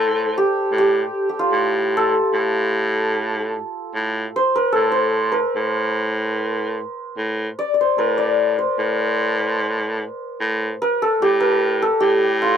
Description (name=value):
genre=Persian modal ensemble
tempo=74 BPM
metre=4/4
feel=straight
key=A dastgah shur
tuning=A4 = 439 Hz
part: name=santur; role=melody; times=0.0-12.6 s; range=F4 to D5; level=-19 LUFS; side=equal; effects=none
part: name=clear baritone saxophone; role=bass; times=0.0-12.6 s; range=A2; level=-22 LUFS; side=equal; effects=none
room=light reverb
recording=dry, close 1970s-style studio recording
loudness=-17 LUFS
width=side -8 dB against mid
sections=0.0-12.6 A section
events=none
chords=none